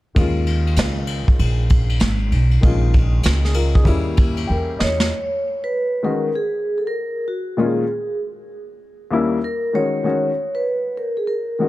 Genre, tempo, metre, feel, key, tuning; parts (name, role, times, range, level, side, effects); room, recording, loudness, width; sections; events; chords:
hip hop, jazz-hop; 97 BPM; 4/4; swing 63% on 16ths; A4 = 440 Hz
warm upright piano; accompaniment; 0.1-11.7 s; Eb2 to G5; -23 LUFS; left 3 dB
upright bass; bass; 0.2-5.1 s; Ab1 to Fb2; -18 LUFS; equal
vintage brush drum kit; drums; 0.2-5.1 s; hi-hat, kick drum, ride cymbal, snare drum; -18 LUFS; equal
vibraphone with soft mallets; melody; 4.5-11.7 s; Gb4 to Db5; -22 LUFS; equal; tape echo
little or no reverb; dark, warm production; -17 LUFS; side -16 dB against mid
0.2-5.1 A section; 5.1-11.7 B section
upright piano fill 4.2-5.1; drum fill 4.5-5.1
0.2 Ebsus2; 2.6 Bbm7; 3.9 Eb7b9; 5.1 Ebm7; 7.6 Bbm7; 8.8 Eb7b9; 10.1 Ab5